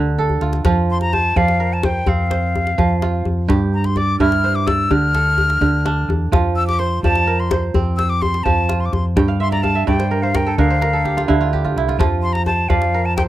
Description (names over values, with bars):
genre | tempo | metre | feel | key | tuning
west african traditional, West African string and xylophone music | 85 BPM (dotted quarters) | 12/8 | straight | F major | A4 = 440 Hz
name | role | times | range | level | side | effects
kora | arpeggios | 0.0-13.3 s | G2 to G5 | -20 LUFS | right 5 dB | none
hollow-body short-scale fingered electric bass | bass | 0.0-13.3 s | C2 to G2 | -20 LUFS | equal | none
djembe | percussion | 0.2-13.3 s | none | -22 LUFS | left 2 dB | none
jazz flute | melody | 0.9-13.2 s | F5 to F6 | -20 LUFS | left 2 dB | none
room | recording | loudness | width
small room ambience | dry, close 1970s-style studio recording | -15 LUFS | side -14 dB against mid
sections
0.7-13.3 A section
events
drum fill 0.2-0.7, 11.5-12.0; kora fill 9.2-12.0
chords
0.0 Dm; 0.7 F; 3.5 G5; 4.9 Dm; 6.3 F5; 9.2 Gm11; 10.6 Dm; 12.0 F5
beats
| 0.65 1.36 2.07 2.78 | 3.49 4.20 4.91 5.62 | 6.33 7.04 7.75 8.45 | 9.16 9.87 10.58 11.29 | 12.00 12.71